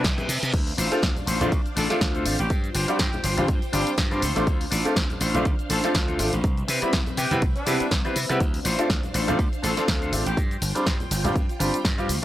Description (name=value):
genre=filtered disco house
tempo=122 BPM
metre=4/4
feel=swing 56% on 16ths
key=D dorian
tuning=A4 = 440 Hz
part: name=mellow horn section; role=melody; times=0.0-10.4 s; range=D4 to A4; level=-33 LUFS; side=equal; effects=sidechain pumping, analog delay
part: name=phased string machine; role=sustained chords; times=0.0-12.2 s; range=C4 to G5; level=-33 LUFS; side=equal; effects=ensemble chorus, phaser, sidechain pumping
part: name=slap bass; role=bass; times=0.0-12.2 s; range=G1 to C3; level=-28 LUFS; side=equal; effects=sidechain pumping
part: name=electronic kick drum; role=drums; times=0.0-12.0 s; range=none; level=-24 LUFS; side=equal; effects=none
part: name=house drum kit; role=drums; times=0.0-12.2 s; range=crash cymbal, hi-hat, shaker, snare drum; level=-28 LUFS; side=equal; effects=sidechain pumping on hats, sidechain pumping on perc, sidechain pumping on cymbals
part: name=tambourine and congas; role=percussion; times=0.0-12.2 s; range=none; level=-36 LUFS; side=left 1 dB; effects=none
part: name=reverse cymbal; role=sound effects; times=0.1-0.5 s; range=none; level=-30 LUFS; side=right 1 dB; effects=none
part: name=electric guitar with an envelope filter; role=riff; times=0.2-10.3 s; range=C4 to D5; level=-30 LUFS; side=left 3 dB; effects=sidechain pumping
part: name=bright baby grand piano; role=accompaniment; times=0.9-12.2 s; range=G3 to F4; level=-26 LUFS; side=equal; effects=phaser, sidechain pumping
room=little or no reverb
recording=dry, gritty hardware recording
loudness=-21 LUFS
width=side -14 dB against mid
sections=0.0-12.2 A section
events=reverse cymbal 0.1-0.5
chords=0.0 Cmaj7; 0.5 Dm7; 2.5 G7sus4; 4.2 Dm7; 6.4 Cmaj7; 8.4 Dm7; 10.4 G7sus4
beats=0.04 | 0.54 1.03 1.52 2.01 | 2.50 3.00 3.49 3.98 | 4.47 4.96 5.45 5.95 | 6.44 6.93 7.42 7.91 | 8.40 8.90 9.39 9.88 | 10.37 10.86 11.36 11.85